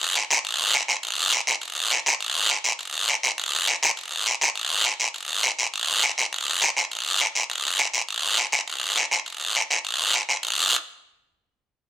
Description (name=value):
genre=latin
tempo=204 BPM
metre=4/4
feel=straight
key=none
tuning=none
part: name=guiro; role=percussion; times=0.2-10.5 s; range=none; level=-20 LUFS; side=equal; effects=none
room=light reverb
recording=close, detailed microphones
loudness=-20 LUFS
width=side -13 dB against mid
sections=0.0-5.7 A section; 5.7-10.4 B section; 10.4-11.9 C section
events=none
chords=none